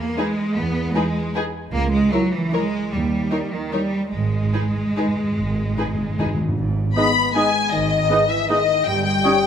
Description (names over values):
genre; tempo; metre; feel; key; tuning
classical; 138-170 BPM; 3/4; rubato; G# minor; A4 = 440 Hz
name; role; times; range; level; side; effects
clear symphonic cello section; bass; 0.0-9.2 s; G2 to B3; -24 LUFS; right 2 dB; none
warm symphonic violin section; melody; 0.2-9.5 s; B4 to B5; -24 LUFS; left 5 dB; none
warm symphonic violin section; second line; 0.2-9.5 s; G#4 to B5; -25 LUFS; left 5 dB; none
warm symphonic viola section; accompaniment; 0.2-9.3 s; B3 to E4; -28 LUFS; right 1 dB; none
warm symphonic double bass section; bass; 0.6-9.2 s; G1 to E2; -26 LUFS; right 3 dB; none
timpani; percussion; 4.1-6.5 s; G#2; -26 LUFS; equal; none
mellow French horn section; sustained chords; 6.9-9.5 s; D#3 to B3; -24 LUFS; left 5 dB; none
small flute group; second line; 7.0-9.3 s; D#6; -27 LUFS; right 1 dB; none
warm oboe; second line; 7.0-9.4 s; C#5 to D#5; -30 LUFS; right 1 dB; none
dark bassoon; accompaniment; 7.0-9.4 s; G3 to G#3; -26 LUFS; right 2 dB; none
room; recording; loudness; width
moderate concert hall reverb, RT60 1.8 s; none; -18 LUFS; side -8 dB against mid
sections
0.0-6.6 A section; 6.6-9.5 B section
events
timpani fill 4.1-6.6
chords
0.0 Emaj7; 1.7 A#dim/C#; 2.9 D#; 4.1 G#5; 6.6 G#m; 8.9 D#7/G